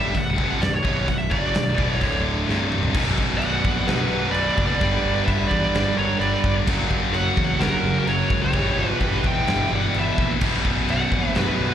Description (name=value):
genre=heavy metal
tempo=128 BPM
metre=4/4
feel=straight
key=B harmonic minor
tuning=A4 = 440 Hz
part: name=high-gain lead guitar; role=melody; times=0.0-11.7 s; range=A#4 to G5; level=-26 LUFS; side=right 1 dB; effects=distortion, slapback echo, tape echo
part: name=heavy high-gain guitar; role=riff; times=0.0-11.7 s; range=B1 to G3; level=-26 LUFS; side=left 12 dB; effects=distortion, slapback echo
part: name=high-gain distorted guitar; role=riff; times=0.0-11.7 s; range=B1 to G3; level=-26 LUFS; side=right 9 dB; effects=distortion, slapback echo
part: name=fuzz picked electric bass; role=bass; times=0.0-11.7 s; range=B0 to E2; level=-26 LUFS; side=equal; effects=overdrive
part: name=big rock drum kit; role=drums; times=0.1-11.5 s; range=china cymbal, crash cymbal, hi-hat, kick drum, snare drum, toms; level=-26 LUFS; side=equal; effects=none
part: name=high-gain lead guitar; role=second line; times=3.4-11.7 s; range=F#4 to E5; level=-33 LUFS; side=right 2 dB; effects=distortion, slapback echo
room=light reverb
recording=live gig heard through the venue's PA, recital hall reverb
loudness=-19 LUFS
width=side -10 dB against mid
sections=0.0-2.9 A section; 2.9-11.7 B section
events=drum fill 2.5-2.9; half time 2.9-11.7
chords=0.0 Bm; 2.0 D5; 2.5 C5; 2.9 Bm; 4.8 G; 6.7 F#; 8.5 Em/G; 10.4 Bm